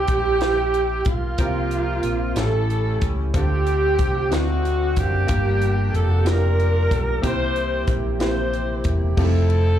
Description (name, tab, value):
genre	slow gospel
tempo	62 BPM (dotted quarters)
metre	6/8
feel	straight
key	unclear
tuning	A4 = 439 Hz
part	warm alto saxophone	melody	0.0-8.9 s	F4 to C5	-26 LUFS	right 6 dB	slapback echo
part	warm saxophone section	melody	0.0-9.8 s	A3 to C5	-26 LUFS	left 2 dB	slapback echo
part	hollow-body short-scale fingered electric bass	bass	0.0-9.8 s	E1 to D2	-22 LUFS	equal	none
part	crisp fusion drum kit	drums	0.1-9.6 s	crash cymbal, hi-hat, kick drum, ride cymbal, snare drum	-25 LUFS	equal	none
part	clear upright piano	accompaniment	1.4-9.8 s	G2 to Bb4	-28 LUFS	left 2 dB	slapback echo
part	percussive tonewheel organ	sustained chords	1.4-9.1 s	D3 to F#5	-32 LUFS	right 5 dB	fast rotary speaker, overdrive, chorus vibrato
room	studio reverb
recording	live gig heard through the venue's PA, club reverb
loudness	-18 LUFS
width	side -10 dB against mid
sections	0.0-9.2 A section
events	none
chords	0.0 C; 1.4 C7sus4; 2.4 A7; 3.3 Dm7; 4.3 D7b9; 5.3 Gm7; 7.2 C7; 9.2 Fmaj7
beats	0.41 | 1.39 2.37 | 3.34 4.32 | 5.29 6.26 | 7.24 8.21 | 9.18